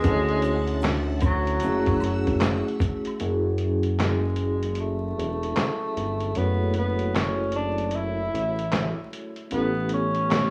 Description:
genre	lo-fi hip hop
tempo	76 BPM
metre	4/4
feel	swing 63% on 16ths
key	F# minor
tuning	A4 = 439 Hz
part	breathy tenor saxophone	melody	0.0-10.5 s	F#3 to E4	-31 LUFS	equal	tape echo
part	vibraphone with soft mallets	accompaniment	0.0-10.5 s	F#3 to C#5	-31 LUFS	equal	cassette tape
part	string machine, violins	sustained chords	0.0-3.2 s	E5 to E6	-44 LUFS	equal	ensemble chorus
part	fat analog bass	bass	0.0-10.5 s	E1 to D2	-29 LUFS	equal	none
part	trip hop sampler-style drum kit	drums	0.0-10.5 s	handclaps, hi-hat, kick drum, snare drum	-29 LUFS	equal	none
part	tube shaker and woodblock	percussion	0.0-3.2 s	none	-45 LUFS	equal	none
room	studio reverb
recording	rough home demo mix, vinyl crackle, small room ambience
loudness	-25 LUFS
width	mono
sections	0.0-3.2 A section; 3.2-10.5 B section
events	break 3.2-10.5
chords	0.0 Dmaj7; 1.6 F#m7; 3.2 F#m9; 9.5 A7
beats	| 0.04 0.83 1.62 2.41 | 3.20 3.99 4.78 5.57 | 6.36 7.15 7.94 8.73 | 9.52 10.31

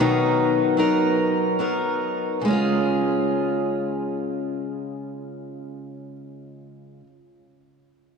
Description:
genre	folk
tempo	69-78 BPM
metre	3/4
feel	straight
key	Db mixolydian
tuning	A4 = 440 Hz
part	picked steel-string acoustic guitar	accompaniment	0.0-7.1 s	Cb3 to Bb4	-21 LUFS	equal	none
room	wet huge ambient reverb, RT60 4.2 s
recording	dreamy mix soaked in reverb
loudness	-20 LUFS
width	side -5 dB against mid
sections	0.0-2.5 A section; 2.5-7.7 B section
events	slowing down 0.0-2.5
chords	0.0 Cbmaj7; 2.5 Db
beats	| 0.00 0.79 1.60 | 2.45 3.32 4.19 | 5.06 5.93 6.79

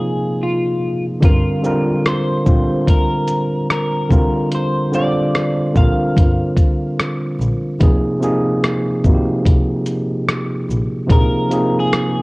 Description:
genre	lo-fi hip hop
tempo	73 BPM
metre	4/4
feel	swing 64% on 16ths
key	G phrygian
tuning	A4 = 440 Hz
part	clean electric guitar	melody	0.0-12.2 s	F4 to F5	-23 LUFS	left 1 dB	analog chorus, low-pass filter, cassette tape
part	tine electric piano	accompaniment	0.0-12.2 s	C3 to C5	-18 LUFS	equal	cassette tape, low-pass filter
part	warm double bass	bass	1.2-11.2 s	F1 to D2	-20 LUFS	equal	tube saturation
part	dusty soul sampler-style drum kit	drums	1.2-12.2 s	hi-hat, kick drum, rim click, shaker	-15 LUFS	equal	cassette tape
room	digital ambience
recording	home recording on cassette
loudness	-14 LUFS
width	side -23 dB against mid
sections	0.0-12.2 A section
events	break 0.0-1.2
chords	0.0 Bb9sus4; 1.2 Gm7; 7.8 Fm11; 11.1 Bb9sus4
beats	0.41 | 1.23 2.05 2.88 3.70 | 4.52 5.34 6.16 6.98 | 7.81 8.63 9.45 10.27 | 11.09 11.92

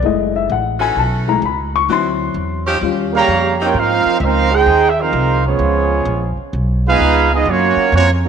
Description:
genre	jazz, big band swing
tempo	129 BPM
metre	4/4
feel	swing 67% on 8ths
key	Ab major from 3.7 s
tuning	A4 = 440 Hz
part	dark upright piano	accompaniment	0.0-3.2 s	F#3 to C#6	-17 LUFS	left 9 dB	none
part	upright bass	bass	0.0-8.3 s	F#1 to Ab2	-18 LUFS	equal	none
part	clear saxophone section	sustained chords	0.8-3.7 s	E3 to G4	-24 LUFS	right 1 dB	none
part	warm trombone section	second line	3.1-8.3 s	C#3 to Ab4	-18 LUFS	right 11 dB	tape echo
part	mellow trumpet section	melody	3.2-8.1 s	Bb3 to A#5	-15 LUFS	right 2 dB	none
room	moderate echo chamber reverb, RT60 2.1 s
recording	1960s-style stereo with parts hard left and right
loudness	-13 LUFS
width	side -7 dB against mid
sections	0.0-3.7 A section; 3.7-8.3 B section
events	upright piano solo 0.0-3.7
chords	0.0 F#m7; 1.9 D9; 2.8 D#9; 3.7 Ab69; 5.6 Db9; 7.5 Gbmaj7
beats	| 0.03 0.49 0.96 1.42 | 1.89 2.35 2.81 3.28 | 3.74 4.21 4.67 5.14 | 5.60 6.07 6.53 7.00 | 7.46 7.93

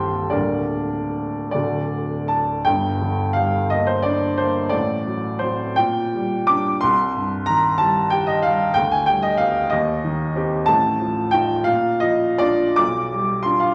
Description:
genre	classical, romantic character piece for solo piano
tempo	49-64 BPM (dotted quarters)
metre	6/8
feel	rubato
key	G minor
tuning	A4 = 439 Hz
part	warm baby grand piano	solo	0.0-13.7 s	C1 to D6	-20 LUFS	equal	none
room	wet recital hall reverb, RT60 1.3 s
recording	none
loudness	-20 LUFS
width	mono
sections	0.0-2.7 A section; 2.7-13.7 B section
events	none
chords	0.3 Gm/D; 1.5 D; 2.7 Gm; 4.7 D7/A; 5.8 Gm/Bb; 6.8 Cm; 8.8 G/D; 9.7 Cm/Eb; 10.7 F7/A; 11.7 Bb; 12.8 G7/B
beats	| 0.34 1.54 | 2.67 3.71 | 4.73 5.79 | 6.82 7.80 | 8.77 9.72 | 10.69 11.66 | 12.77

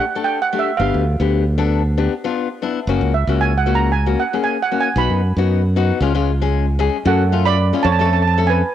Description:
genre	calypso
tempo	115 BPM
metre	4/4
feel	swing 54% on 16ths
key	unclear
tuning	A4 = 441 Hz
part	steel pan	melody	0.0-8.7 s	A4 to B5	-19 LUFS	right 7 dB	cassette tape
part	nylon-string guitar	accompaniment	0.0-8.6 s	G#3 to A4	-21 LUFS	left 8 dB	cassette tape
part	modern bright fingered electric bass	bass	0.8-8.6 s	F#1 to F#2	-17 LUFS	equal	none
room	light reverb, small room reverb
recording	home recording on cassette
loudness	-15 LUFS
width	side -10 dB against mid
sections	0.0-7.1 A section; 7.1-8.7 B section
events	steel pan solo 0.0-7.1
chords	0.0 Dsus4; 0.8 G7; 2.9 F#; 5.0 B; 6.0 C#; 7.1 F#m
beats	0.27 | 0.79 1.31 1.83 2.36 | 2.88 3.40 3.92 4.45 | 4.97 5.49 6.01 6.54 | 7.06 7.58 8.10 8.62

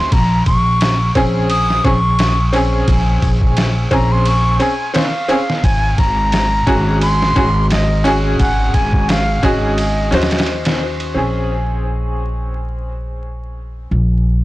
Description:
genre	trip hop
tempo	87 BPM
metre	4/4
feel	swing 55% on 16ths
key	Bb minor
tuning	A4 = 440 Hz
part	bright reedy wooden flute	melody	0.0-10.8 s	Eb5 to Eb6	-20 LUFS	equal	tape echo
part	bright upright piano	accompaniment	0.0-14.4 s	C4 to C5	-19 LUFS	equal	tremolo, tape echo
part	upright bass	bass	0.0-14.4 s	Ab1 to Eb2	-17 LUFS	equal	tube saturation
part	trip hop sampler-style drum kit	drums	0.1-11.1 s	kick drum, ride cymbal, snare drum	-19 LUFS	equal	vintage 12-bit sampler grit
room	small room ambience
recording	blown-out, overdriven recording, vinyl crackle, overdrive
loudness	-13 LUFS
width	side -17 dB against mid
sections	0.0-11.2 A section; 11.2-14.4 B section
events	none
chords	0.1 Bbm9; 5.6 Ab7sus4; 11.2 Bbm9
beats	| 0.12 0.81 1.50 2.19 | 2.88 3.57 4.26 4.95 | 5.63 6.32 7.01 7.70 | 8.39 9.08 9.77 10.46 | 11.15 11.84 12.53 13.22 | 13.91

